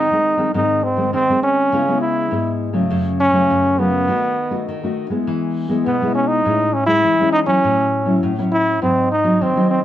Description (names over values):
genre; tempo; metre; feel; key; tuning
samba and choro; 102 BPM; 4/4; straight; unclear; A4 = 438 Hz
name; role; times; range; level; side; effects
bright trombone; melody; 0.0-9.8 s; B3 to E4; -16 LUFS; right 1 dB; none
nylon-string guitar; accompaniment; 0.0-9.8 s; F#2 to F#4; -19 LUFS; left 1 dB; none
room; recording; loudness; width
moderate studio reverb, RT60 0.8 s; worn, warbling old tape, cassette tape, warbly pitch drift; -15 LUFS; side -12 dB against mid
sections
0.0-9.8 A section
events
none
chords
0.0 G#; 1.7 C#m7; 2.9 F#m; 4.1 D#dim; 5.3 E; 6.5 Amaj7; 7.6 F#m7/A; 8.8 G#7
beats
0.54 1.13 | 1.72 2.32 2.91 3.50 | 4.09 4.68 5.27 5.87 | 6.46 7.05 7.64 8.23 | 8.82 9.41